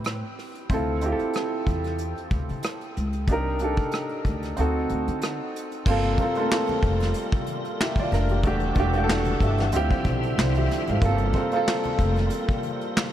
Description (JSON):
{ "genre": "R&B, neo-soul", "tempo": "93 BPM", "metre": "4/4", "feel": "swing 56% on 16ths", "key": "unclear", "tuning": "A4 = 438 Hz", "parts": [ { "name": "warm upright piano", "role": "accompaniment", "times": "0.0-13.1 s", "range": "A3 to F#5", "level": "-26 LUFS", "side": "right 1 dB", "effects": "wide subtle chorus" }, { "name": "upright bass", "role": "bass", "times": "0.0-12.3 s", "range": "E1 to D3", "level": "-26 LUFS", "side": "equal", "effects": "none" }, { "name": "vintage brush drum kit", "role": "drums", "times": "0.0-13.1 s", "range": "crash cymbal, handclaps, hi-hat, kick drum, rim click, snare drum", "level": "-27 LUFS", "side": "equal", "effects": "none" }, { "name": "tonewheel organ", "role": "sustained chords", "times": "5.9-13.1 s", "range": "D3 to E5", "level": "-32 LUFS", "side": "left 2 dB", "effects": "chorus vibrato, fast rotary speaker" }, { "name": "congas", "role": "percussion", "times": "5.9-12.8 s", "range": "none", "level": "-39 LUFS", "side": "left 3 dB", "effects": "none" } ], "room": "moderate huge ambient reverb, RT60 8.4 s", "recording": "dreamy mix soaked in reverb", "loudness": "-22 LUFS", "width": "side -11 dB against mid", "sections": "0.0-5.9 A section; 5.9-13.1 B section", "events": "kick muted 4.6-5.9", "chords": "0.0 Am9; 0.7 Dm9; 3.3 Cm9; 4.6 D7b9; 5.9 Gm11; 8.4 Em11; 9.7 Dm11; 11.0 Gm11" }